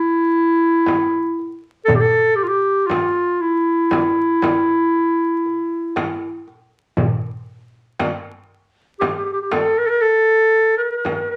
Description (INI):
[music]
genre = Arabic maqam ensemble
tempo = 118 BPM (eighths)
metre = 10/8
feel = straight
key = unclear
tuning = A4 = 444 Hz
[part]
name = clear clarinet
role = melody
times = 0.0-11.4 s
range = E4 to Bb4+28c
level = -18 LUFS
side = equal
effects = none
[part]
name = darbuka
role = percussion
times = 0.4-11.3 s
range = none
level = -28 LUFS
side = equal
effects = none
[part]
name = frame drum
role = percussion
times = 0.9-11.3 s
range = none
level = -26 LUFS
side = equal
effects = none
[sound]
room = wet studio reverb, RT60 0.6 s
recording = vinyl crackle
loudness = -18 LUFS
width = mono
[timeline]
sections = 0.0-11.4 A section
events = none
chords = none